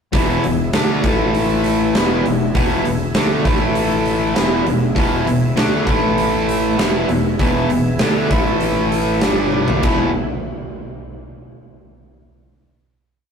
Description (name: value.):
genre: blues rock power trio and southern rock.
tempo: 99 BPM.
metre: 4/4.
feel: straight.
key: E mixolydian.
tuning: A4 = 440 Hz.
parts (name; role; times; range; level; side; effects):
overdriven tonewheel organ; sustained chords; 0.1-10.3 s; B3 to E5; -28 LUFS; right 3 dB; chorus vibrato, slow rotary speaker.
overdriven electric guitar; riff; 0.1-10.1 s; E2 to D4; -17 LUFS; left 1 dB; none.
growling fingered electric bass; bass; 0.1-10.1 s; E1 to D2; -25 LUFS; equal; overdrive.
huge arena drum kit; drums; 0.1-10.0 s; crash cymbal, hi-hat, kick drum, snare drum, toms; -19 LUFS; equal; none.
room: wet stone room reverb, RT60 1.2 s.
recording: rough rehearsal-room recording, tube saturation.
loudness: -14 LUFS.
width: side -6 dB against mid.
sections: 0.1-9.8 riff; 9.8-12.3 final chord.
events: drum fill 9.5-9.8.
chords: 0.1 E; 1.0 A5; 1.9 E; 3.5 A5; 4.4 E; 5.9 A5; 6.8 E; 8.3 A5; 9.2 G5; 9.8 E.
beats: | 0.13 0.74 1.34 1.95 | 2.55 3.16 3.76 4.37 | 4.97 5.58 6.19 6.79 | 7.40 8.01 8.62 9.23 | 9.85.